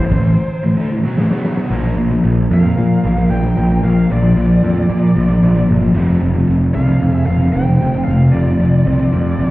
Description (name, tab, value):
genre	heavy metal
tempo	113 BPM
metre	4/4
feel	straight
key	unclear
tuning	A4 = 439 Hz
part	high-gain lead guitar	melody	0.0-9.5 s	C5 to G5	-26 LUFS	equal	distortion, tape echo
part	heavy high-gain guitar	riff	0.0-9.5 s	F2 to B3	-17 LUFS	right 3 dB	distortion
part	sludgy distorted guitar	riff	0.0-9.5 s	F2 to B3	-16 LUFS	left 2 dB	overdrive
part	fuzz picked electric bass	bass	0.0-9.5 s	F1 to Bb2	-17 LUFS	equal	overdrive
part	big rock drum kit	drums	0.1-1.7 s	crash cymbal, kick drum, snare drum	-20 LUFS	equal	none
part	bluesy overdriven lead guitar	second line	2.5-9.5 s	F4 to C5	-30 LUFS	right 2 dB	distortion, tape echo
room	light reverb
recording	heard muffled through a wall, stone room reverb, vinyl crackle, EQ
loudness	-12 LUFS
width	side -18 dB against mid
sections	0.0-1.7 A section; 1.7-9.5 B section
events	lead electric guitar solo 0.0-1.7; break 0.7-1.7; drum fill 1.2-1.7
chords	0.0 Am; 1.7 Bb; 6.0 F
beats	0.12 0.65 1.18 | 1.71 2.24 2.77 3.30 | 3.83 4.36 4.89 5.42 | 5.95 6.48 7.01 7.54 | 8.07 8.61 9.13